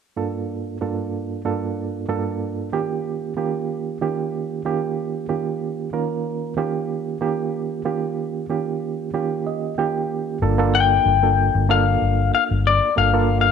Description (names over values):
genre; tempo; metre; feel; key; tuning
blues; 94 BPM; 4/4; swing 53% on 16ths; G minor; A4 = 444 Hz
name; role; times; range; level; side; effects
reed electric piano; accompaniment; 0.2-13.5 s; G2 to G5; -23 LUFS; right 6 dB; fast tremolo
vintage muted fingered electric bass; bass; 10.4-13.5 s; G1; -20 LUFS; left 2 dB; none
electric guitar through a small old amp; melody; 10.7-13.5 s; D5 to G5; -18 LUFS; left 11 dB; none
room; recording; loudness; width
moderate echo chamber reverb, RT60 1.6 s; 1960s-style stereo with parts hard left and right; -20 LUFS; side -6 dB against mid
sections
0.2-10.4 A section; 10.4-13.5 B section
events
reed electric piano fill 9.1-10.4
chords
0.2 Gm7; 2.7 Eb7; 10.4 Gm7